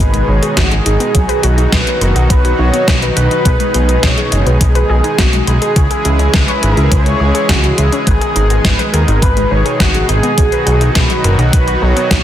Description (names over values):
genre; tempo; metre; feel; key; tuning
synthwave; 104 BPM; 4/4; straight; G# minor; A4 = 442 Hz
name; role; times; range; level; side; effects
wide unison lead; melody; 0.0-12.2 s; F#4 to C#5; -18 LUFS; right 1 dB; wide subtle chorus, digital delay, shimmer reverb
soft supersaw; sustained chords; 0.0-12.2 s; B2 to G#4; -18 LUFS; right 1 dB; vintage 12-bit sampler grit, sidechain pumping, shimmer reverb
warbly dusty pluck; arpeggios; 0.0-12.2 s; F#3 to C#5; -22 LUFS; left 4 dB; chorus, tape echo, shimmer reverb
fat analog bass; bass; 0.0-12.2 s; F#1 to D#2; -13 LUFS; equal; sidechain pumping
gated 80s digital drum machine; drums; 0.1-12.2 s; hi-hat, snare drum; -17 LUFS; left 1 dB; gated reverb, gated reverb snare, overdrive
electronic kick drum; drums; 0.6-12.2 s; none; -14 LUFS; equal; overdrive
room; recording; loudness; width
moderate recital hall reverb, RT60 1.4 s, digital ambience; dense, heavily limited modern master; -10 LUFS; side -11 dB against mid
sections
0.0-12.2 A section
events
none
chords
0.0 G#m; 1.1 B; 3.5 G#m; 5.8 C#m; 8.1 G#m; 10.4 B